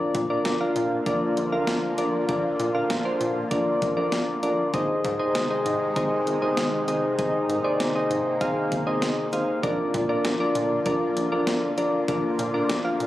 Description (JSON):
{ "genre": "synth-pop", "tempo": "98 BPM", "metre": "4/4", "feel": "straight", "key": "unclear", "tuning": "A4 = 437 Hz", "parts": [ { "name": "soft electric-piano-like synth keys", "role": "accompaniment", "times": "0.0-13.1 s", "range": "D4 to F5", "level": "-24 LUFS", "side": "equal", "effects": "chorus" }, { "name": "lush unison pad", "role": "sustained chords", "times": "0.0-13.1 s", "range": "C3 to F4", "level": "-30 LUFS", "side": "equal", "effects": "chorus, phaser" }, { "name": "rubbery square bass", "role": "bass", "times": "0.1-13.1 s", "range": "Ab1 to Bb2", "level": "-32 LUFS", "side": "equal", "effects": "none" }, { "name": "clean 12-bit digital drum machine", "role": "drums", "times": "0.1-13.1 s", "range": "hi-hat, kick drum, snare drum", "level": "-31 LUFS", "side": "equal", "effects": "overdrive" } ], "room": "wet plate reverb, RT60 2.0 s", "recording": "recorded on a phone in the room, club reverb, compression", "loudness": "-22 LUFS", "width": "side -14 dB against mid", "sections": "0.0-13.1 A section", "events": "none", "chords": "0.0 Bb; 4.7 Ab; 9.6 Bb", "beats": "0.45 1.06 1.68 | 2.29 2.90 3.51 4.12 | 4.74 5.35 5.96 6.57 | 7.19 7.80 8.41 9.02 | 9.63 10.25 10.86 11.47 | 12.08 12.70" }